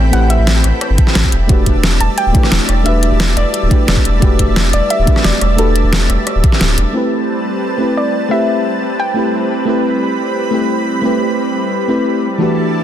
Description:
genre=liquid drum and bass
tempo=176 BPM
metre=4/4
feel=straight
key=A dorian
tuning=A4 = 442 Hz
part: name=soft round pluck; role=melody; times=0.0-9.5 s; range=A4 to A5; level=-21 LUFS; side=equal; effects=chorus, dub echo
part: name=mellow FM electric piano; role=accompaniment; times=0.0-12.8 s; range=E3 to B4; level=-17 LUFS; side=equal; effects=chorus, dub echo
part: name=lush unison pad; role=sustained chords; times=0.0-12.8 s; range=G3 to B5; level=-20 LUFS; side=equal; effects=chorus, sidechain pumping
part: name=sub bass with octave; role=bass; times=0.0-6.9 s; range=D1 to A1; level=-14 LUFS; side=equal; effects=none
part: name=pop drum kit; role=drums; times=0.1-12.8 s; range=hi-hat, rim click, snare drum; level=-17 LUFS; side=equal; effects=overdrive, low-pass filter on snare, low-pass filter on hats, low-pass filter on cymbals, low-pass filter on room
part: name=electronic kick drum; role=drums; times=1.0-6.5 s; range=none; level=-12 LUFS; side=equal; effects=overdrive
room=light reverb, digital ambience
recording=dense, heavily limited modern master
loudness=-11 LUFS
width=side -10 dB against mid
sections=0.0-6.9 A section; 6.9-12.8 B section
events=drop 0.0-6.9; kick drops out 6.6-6.9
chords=0.0 Am9; 1.3 Em11; 6.9 Am9; 12.2 Em11

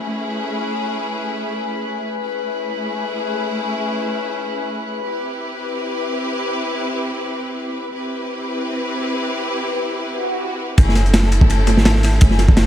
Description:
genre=drum and bass, jungle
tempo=free time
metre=none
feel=none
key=unclear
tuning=A4 = 440 Hz
part: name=clear studio string section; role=sustained chords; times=0.0-12.7 s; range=A3 to B4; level=-23 LUFS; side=left 1 dB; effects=none
part: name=drifting glass-harmonics texture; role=texture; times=0.0-12.7 s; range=A3 to B5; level=-28 LUFS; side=left 4 dB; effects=chorus, built-in reverb
part: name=swell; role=sound effects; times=10.2-10.8 s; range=none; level=-25 LUFS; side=right 2 dB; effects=none
part: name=long sustained 808-style bass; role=bass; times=10.8-12.7 s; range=F#1 to G#1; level=-15 LUFS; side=equal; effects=tube saturation
part: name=crunchy breakbeat drum kit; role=drums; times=10.8-12.7 s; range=kick drum, ride cymbal, snare drum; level=-14 LUFS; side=equal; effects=analog delay
part: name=dusty soul sampler-style drum kit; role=drums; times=10.8-12.7 s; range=hi-hat, snare drum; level=-29 LUFS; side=left 1 dB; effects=overdrive, high-pass filter on hats, high-pass filter on snare, high-pass filter on room, analog delay
room=moderate spring reverb, RT60 1.2 s, small room ambience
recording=echo-heavy mix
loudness=-18 LUFS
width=side -11 dB against mid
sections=0.0-10.8 A section; 10.8-12.7 B section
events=swell 10.2-10.8; drop 10.8-12.7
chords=0.0 Amaj9; 5.1 Cmaj7; 10.8 F#m9

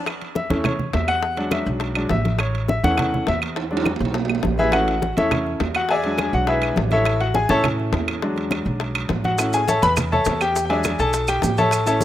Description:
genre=latin, salsa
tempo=206 BPM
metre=4/4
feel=straight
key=A major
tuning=A4 = 439 Hz
part: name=bongos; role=percussion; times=0.1-12.0 s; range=none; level=-30 LUFS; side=left 8 dB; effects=none
part: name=claves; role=percussion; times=0.1-11.9 s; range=none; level=-28 LUFS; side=right 4 dB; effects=none
part: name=congas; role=percussion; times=0.1-12.0 s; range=none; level=-28 LUFS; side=equal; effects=none
part: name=timbales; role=percussion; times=0.1-12.0 s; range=none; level=-29 LUFS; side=right 7 dB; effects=none
part: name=bright baby grand piano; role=accompaniment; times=0.4-12.0 s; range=E3 to B5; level=-21 LUFS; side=left 1 dB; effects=none
part: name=upright bass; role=bass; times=0.5-12.0 s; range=A1 to A2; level=-25 LUFS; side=right 1 dB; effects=none
part: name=maracas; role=percussion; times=9.4-12.0 s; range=none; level=-32 LUFS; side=right 3 dB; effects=none
room=light reverb, small room ambience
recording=rough home demo mix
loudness=-18 LUFS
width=side -12 dB against mid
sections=0.1-12.0 A section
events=grand piano solo 0.1-12.0; drum fill 3.6-4.7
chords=0.1 A; 1.2 E7; 2.4 A; 3.6 E7; 4.7 A; 5.9 E7; 7.1 A; 8.2 E7; 9.4 A; 10.6 E7

